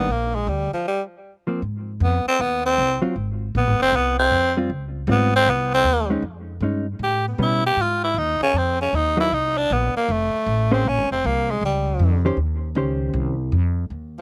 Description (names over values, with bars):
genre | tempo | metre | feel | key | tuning
jazz, small-group swing and bop | 156 BPM | 4/4 | swing 66% on 8ths | Ab major | A4 = 440 Hz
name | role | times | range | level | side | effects
growling tenor saxophone | melody | 0.0-12.2 s | F3 to G4 | -22 LUFS | equal | none
hollow-body jazz guitar | accompaniment | 0.0-13.4 s | Eb3 to C5 | -26 LUFS | equal | slapback echo
upright bass | bass | 0.0-14.2 s | F1 to B2 | -26 LUFS | equal | none
room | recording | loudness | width
little or no reverb | recorded outdoors, with no room sound | -21 LUFS | mono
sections
0.0-1.6 A section; 1.6-13.9 B section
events
break 0.8-1.6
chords
0.0 Ebmaj7 (rootless); 1.6 Ab6; 4.7 Dbmaj9#11; 6.2 Fm9; 7.0 A9; 7.8 Ab5; 9.3 Bbadd9; 10.1 F; 10.8 Bbmadd9 (rootless); 12.4 Eb13